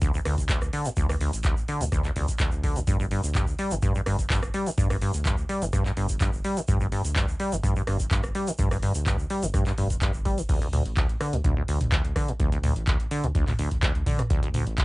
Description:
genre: acid house.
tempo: 126 BPM.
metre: 4/4.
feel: straight.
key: unclear.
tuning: A4 = 440 Hz.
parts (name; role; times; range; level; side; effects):
acid bass, saw; riff; 0.0-14.8 s; D2 to G3; -27 LUFS; equal; wide subtle chorus, analog delay.
booming analog drum machine; drums; 0.0-14.8 s; crash cymbal, handclaps, hi-hat, rim click, toms; -32 LUFS; equal; cassette tape.
electronic kick drum; drums; 0.0-14.8 s; none; -26 LUFS; equal; cassette tape.
tube shaker; percussion; 0.0-10.5 s; none; -39 LUFS; right 1 dB; none.
round analog bass; bass; 0.3-14.8 s; F1 to D2; -31 LUFS; equal; tube saturation, sidechain pumping.
room: light reverb.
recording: home recording on cassette, nothing above 10.7 kHz.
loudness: -23 LUFS.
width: side -21 dB against mid.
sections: 0.0-10.5 A section; 10.5-14.8 B section.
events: drop 10.5-14.8.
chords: 0.0 D5; 2.9 G5; 10.5 D5.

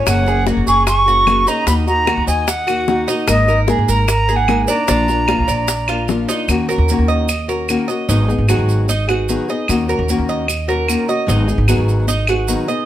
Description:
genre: latin, Cuban son and guajira.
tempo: 150 BPM.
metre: 4/4.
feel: straight.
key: Eb minor.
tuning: A4 = 440 Hz.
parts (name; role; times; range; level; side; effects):
nylon-string guitar; accompaniment; 0.0-12.9 s; Eb3 to Bb4; -20 LUFS; left 4 dB; none.
Cuban tres; arpeggios; 0.0-12.9 s; Db4 to Eb5; -21 LUFS; right 4 dB; none.
upright bass; bass; 0.0-12.5 s; Gb1 to Eb2; -18 LUFS; equal; none.
silver concert flute; melody; 0.1-6.0 s; Eb5 to Db6; -17 LUFS; right 1 dB; none.
bongos; percussion; 0.1-6.5 s; none; -23 LUFS; left 6 dB; none.
claves; percussion; 0.1-12.5 s; none; -24 LUFS; left 1 dB; none.
maracas; percussion; 0.1-12.9 s; none; -27 LUFS; right 7 dB; none.
room: light reverb.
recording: none.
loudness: -13 LUFS.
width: side -12 dB against mid.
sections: 0.0-6.5 A section; 6.5-12.9 B section.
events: none.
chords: 0.1 Gbadd9; 1.7 Ebm; 3.3 Absus2; 4.9 Bb; 6.5 Ebm7; 8.1 Abm7; 9.7 Ebm7; 11.3 Abm7.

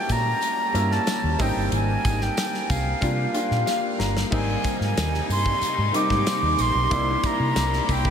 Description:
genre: polished 1980s jazz-funk pop.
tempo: 92 BPM.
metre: 4/4.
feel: straight.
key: unclear.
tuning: A4 = 440 Hz.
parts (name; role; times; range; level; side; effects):
breathy concert flute; melody; 0.0-8.1 s; F5 to D6; -25 LUFS; equal; tape echo.
clear baby grand piano; accompaniment; 0.0-8.1 s; G3 to Bb5; -27 LUFS; equal; lush chorus.
vintage muted fingered electric bass; bass; 0.1-8.1 s; G1 to C3; -25 LUFS; equal; none.
modern studio drum kit; drums; 0.1-8.1 s; crash cymbal, hi-hat, kick drum, snare drum; -28 LUFS; left 1 dB; none.
tambourine; percussion; 0.1-8.0 s; none; -40 LUFS; right 7 dB; none.
clear studio string section; sustained chords; 4.3-8.1 s; C3 to E4; -32 LUFS; left 2 dB; none.
room: wet huge ambient reverb, RT60 7.7 s.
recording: dreamy mix soaked in reverb.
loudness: -20 LUFS.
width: side -8 dB against mid.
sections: 0.0-4.3 A section; 4.3-8.1 B section.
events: grand piano fill 3.3-4.3; drum fill 3.7-4.3.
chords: 0.0 Eb7b9 (rootless); 1.4 Abmaj9; 3.0 C7sus4; 4.3 Abmaj7; 6.9 C7.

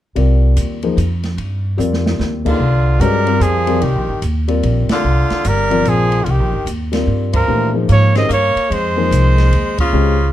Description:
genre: modal jazz.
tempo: 147 BPM.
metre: 3/4.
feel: swing 64% on 8ths.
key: C minor.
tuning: A4 = 437 Hz.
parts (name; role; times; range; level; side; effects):
warm concert grand piano; accompaniment; 0.2-10.2 s; Eb3 to F5; -19 LUFS; left 4 dB; none.
upright bass; bass; 0.2-10.3 s; G1 to Bb2; -15 LUFS; equal; none.
open jazz drum kit; drums; 0.2-9.9 s; crash cymbal, hi-hat, kick drum, ride cymbal, snare drum; -25 LUFS; right 1 dB; none.
clear trumpet; melody; 2.5-10.3 s; F4 to Eb5; -18 LUFS; right 3 dB; none.
edgy tenor saxophone; second line; 2.5-10.3 s; Db3 to C4; -22 LUFS; left 6 dB; none.
room: light reverb.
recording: dark, warm production.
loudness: -13 LUFS.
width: side -12 dB against mid.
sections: 0.2-2.6 A section; 2.6-10.3 B section.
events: drum fill 1.8-2.2; band accent 4.8, 7.3, 9.7.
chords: 0.2 Cm11; 7.5 Bbm11.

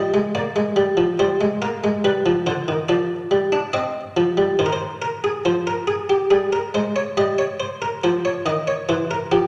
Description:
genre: classical, baroque-style two-part invention for harpsichord.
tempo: 70 BPM.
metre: 4/4.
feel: straight.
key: F minor.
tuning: A4 = 439 Hz.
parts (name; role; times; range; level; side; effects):
buff-stop harpsichord; solo; 0.0-9.5 s; D3 to Eb5; -21 LUFS; equal; none.
room: wet recital hall reverb, RT60 1.4 s.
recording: none.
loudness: -21 LUFS.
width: mono.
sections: 0.0-5.5 A section; 5.5-9.5 B section.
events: none.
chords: 0.3 Bb; 2.0 G7; 3.7 Cm; 5.5 Fm; 7.2 Eb/G; 8.9 C7/E.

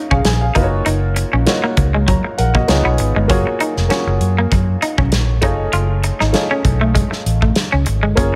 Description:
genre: polished 1980s jazz-funk pop.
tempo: 98 BPM.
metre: 4/4.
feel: swing 54% on 16ths.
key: unclear.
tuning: A4 = 440 Hz.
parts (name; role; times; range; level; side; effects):
clear concert grand piano; accompaniment; 0.0-8.4 s; A3 to A#5; -23 LUFS; equal; lush chorus.
semi-hollow electric guitar; riff; 0.0-8.3 s; F#3 to F4; -23 LUFS; equal; lush chorus.
vintage muted fingered electric bass; bass; 0.1-8.3 s; E#1 to F#2; -19 LUFS; equal; none.
modern studio drum kit; drums; 0.1-8.3 s; hi-hat, kick drum, snare drum; -21 LUFS; equal; none.
room: light reverb.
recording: none.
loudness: -16 LUFS.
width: mono.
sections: 0.0-8.4 A section.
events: none.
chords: 0.0 A#m7; 0.6 D#m9/F#; 2.7 C#9; 3.3 F#maj9; 5.4 F7alt/F#.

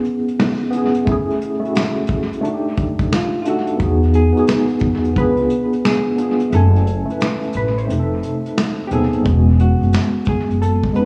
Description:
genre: lo-fi hip hop.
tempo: 88 BPM.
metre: 4/4.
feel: swing 62% on 16ths.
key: E major.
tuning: A4 = 440 Hz.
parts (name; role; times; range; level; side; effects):
mellow tine electric piano; accompaniment; 0.0-11.1 s; G#3 to G#5; -21 LUFS; equal; overdrive, medium tremolo, low-pass filter.
vintage brush drum kit; drums; 0.0-11.1 s; finger snaps, hi-hat, kick drum, snare drum; -24 LUFS; equal; dub echo.
vintage hollow-body jazz guitar; melody; 3.1-11.1 s; F4 to C5; -26 LUFS; equal; low-pass filter, dub echo.
upright bass; bass; 3.8-11.1 s; Eb1 to E2; -19 LUFS; equal; none.
room: light reverb, small room ambience.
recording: echo-heavy mix, cassette tape, small room reverb.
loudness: -17 LUFS.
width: mono.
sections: 0.0-9.3 A section; 9.3-11.1 B section.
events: break 0.0-3.8; kick muted 6.5-9.3.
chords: 0.0 E6/B; 1.1 F#m7; 2.4 F13/A; 3.8 Emaj7; 5.2 C#7b9; 6.5 F#m7; 7.9 F7#11; 9.3 E69.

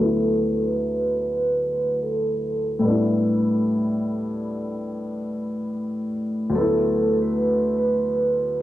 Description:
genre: lo-fi hip hop.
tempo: 73 BPM.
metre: 4/4.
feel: swing 62% on 16ths.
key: D major.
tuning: A4 = 440 Hz.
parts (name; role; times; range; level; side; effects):
vibraphone with soft mallets; melody; 0.0-8.6 s; A4 to B4; -23 LUFS; right 2 dB; low-pass filter, analog delay.
dark upright piano; accompaniment; 0.0-8.6 s; D2 to E4; -23 LUFS; left 1 dB; low-pass filter.
room: moderate spring reverb, RT60 1.4 s, small room ambience.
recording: none.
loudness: -20 LUFS.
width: side -14 dB against mid.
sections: 0.0-8.6 A section.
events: filter sweep 0.0-8.6.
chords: 0.0 D6; 2.8 A7sus4; 6.5 D6.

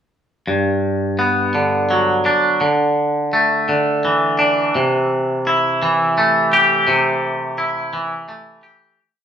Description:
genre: post-rock.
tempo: 56 BPM (dotted quarters).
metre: 6/8.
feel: straight.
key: unclear.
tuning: A4 = 439 Hz.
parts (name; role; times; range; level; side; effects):
twangy electric guitar; solo; 0.5-9.0 s; G2 to G4; -15 LUFS; equal; none.
room: wet large studio reverb, RT60 1.0 s.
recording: band playing live in one room.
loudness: -15 LUFS.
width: side -8 dB against mid.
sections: 0.5-9.0 A section.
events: fade-out 6.9-9.0.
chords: 0.5 Gmaj7; 2.6 Dsus2; 4.7 Am7/C.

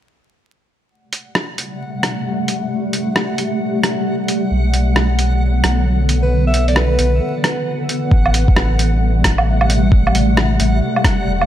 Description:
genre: future garage.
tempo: 133 BPM.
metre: 4/4.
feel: swing 63% on 16ths.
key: unclear.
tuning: A4 = 439 Hz.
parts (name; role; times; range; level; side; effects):
granular cloud pad; sustained chords; 1.7-11.5 s; C3 to B3; -20 LUFS; equal; built-in reverb, sidechain pumping.
backwards swelling texture; texture; 1.7-11.5 s; F#5; -28 LUFS; left 1 dB; built-in reverb.
lo-fi sampler-style drum kit; drums; 1.1-11.5 s; hi-hat, rim click, woodblock; -19 LUFS; right 1 dB; small room ambience.
warm sub bass; bass; 4.5-11.5 s; E1 to B1; -16 LUFS; equal; tube saturation, sidechain pumping.
clear alto saxophone; melody; 6.2-7.4 s; B4 to E5; -24 LUFS; equal; dub echo.
electronic kick drum; drums; 8.1-11.2 s; none; -14 LUFS; equal; small room ambience.
room: moderate lush hall reverb, RT60 1.7 s.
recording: vinyl crackle.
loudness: -14 LUFS.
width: side -11 dB against mid.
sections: 0.9-8.1 A section; 8.1-11.5 B section.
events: break 7.7-8.1.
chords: 0.9 Am7; 4.5 Bm; 8.1 Am7.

